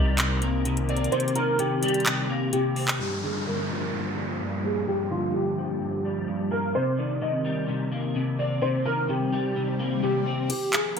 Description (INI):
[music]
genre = hip hop, trap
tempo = 128 BPM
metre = 4/4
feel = half-time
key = G minor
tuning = A4 = 440 Hz
[part]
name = dark concert grand piano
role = melody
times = 0.0-11.0 s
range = F4 to Eb5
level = -28 LUFS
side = right 1 dB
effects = analog chorus, low-pass filter
[part]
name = electric guitar at the edge of break-up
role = accompaniment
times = 0.0-10.5 s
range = G2 to C4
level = -27 LUFS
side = left 2 dB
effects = ensemble chorus, low-pass filter
[part]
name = dark analog pad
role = sustained chords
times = 0.0-11.0 s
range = Eb3 to C5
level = -35 LUFS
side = right 1 dB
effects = chorus, low-pass filter
[part]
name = warm 808-style bass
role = bass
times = 0.0-1.1 s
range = C2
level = -27 LUFS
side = equal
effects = none
[part]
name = trap drum kit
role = drums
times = 0.2-3.0, 10.5-11.0 s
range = crash cymbal, handclaps, hi-hat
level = -26 LUFS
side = right 1 dB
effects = gated reverb
[part]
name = downlifter and swell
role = sound effects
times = 3.0-10.5 s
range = none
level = -34 LUFS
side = left 2 dB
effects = none
[sound]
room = moderate plate reverb, RT60 1.5 s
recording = bright 1980s-style digital production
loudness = -24 LUFS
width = side -6 dB against mid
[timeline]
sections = 0.0-3.0 A section; 3.0-10.5 B section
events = kick muted 1.1-3.0, 10.5-11.0; filter sweep 3.0-10.5; swell 9.1-10.5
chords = 0.0 Cm7; 3.0 Gm7; 6.7 Cm7; 10.5 Gm7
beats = 0.18 0.65 | 1.12 1.59 2.06 2.53 | 3.00 3.47 3.94 4.40 | 4.87 5.34 5.81 6.28 | 6.75 7.22 7.68 8.15 | 8.62 9.09 9.56 10.03 | 10.50 10.97